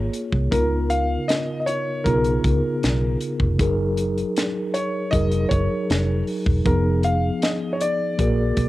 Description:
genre	lush 1970s-style soul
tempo	78 BPM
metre	4/4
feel	straight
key	unclear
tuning	A4 = 442 Hz
part	warm concert grand piano	melody	0.0-8.7 s	Bb4 to F5	-25 LUFS	left 1 dB	cassette tape
part	mellow tine electric piano	accompaniment	0.0-8.7 s	Db3 to D5	-24 LUFS	equal	medium stereo tremolo, cassette tape
part	vintage muted fingered electric bass	bass	0.0-8.7 s	Fb1 to Db2	-22 LUFS	equal	none
part	tight funk drum kit	drums	0.1-8.7 s	hi-hat, kick drum, snare drum	-24 LUFS	equal	none
room	little or no reverb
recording	home recording on cassette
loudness	-19 LUFS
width	side -16 dB against mid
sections	0.0-8.7 A section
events	none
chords	0.0 Bbm7; 0.5 Db13; 3.6 Gb69; 6.7 Fm7b5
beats	| 0.52 1.29 2.06 2.83 | 3.59 4.36 5.13 5.89 | 6.66 7.43 8.19

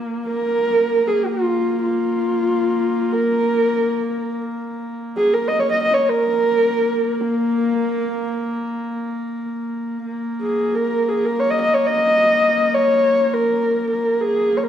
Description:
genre	mongolian traditional, Mongolian folk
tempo	free time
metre	none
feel	none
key	Bb yu mode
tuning	A4 = 439 Hz
part	rich horsehead fiddle	drone	0.0-14.7 s	Bb3	-24 LUFS	equal	none
part	dark horsehead fiddle	melody	0.3-14.7 s	Bb3 to Eb5	-17 LUFS	equal	none
room	wet recital hall reverb, RT60 1.7 s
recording	none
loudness	-17 LUFS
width	side -9 dB against mid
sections	0.0-10.0 A section; 10.0-14.7 A section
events	none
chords	none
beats	free time

